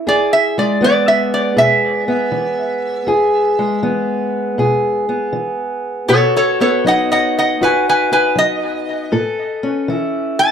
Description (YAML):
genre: acoustic country blues, solo or duo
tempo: 79 BPM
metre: 4/4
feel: swing 67% on 8ths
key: E major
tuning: A4 = 440 Hz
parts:
  - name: fingerpicked steel-string acoustic guitar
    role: accompaniment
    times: 0.0-10.5 s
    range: E2 to A4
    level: -17 LUFS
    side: equal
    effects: none
  - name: lap resonator guitar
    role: melody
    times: 0.1-10.5 s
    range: A4 to A5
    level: -15 LUFS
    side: equal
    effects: analog delay
room: moderate small room reverb, RT60 0.6 s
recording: none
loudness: -14 LUFS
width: side -8 dB against mid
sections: 0.0-10.5 A section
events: none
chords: 0.1 E; 6.1 B; 9.1 A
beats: | 0.06 0.81 1.57 2.32 | 3.08 3.83 4.59 5.34 | 6.10 6.85 7.61 8.36 | 9.12 9.88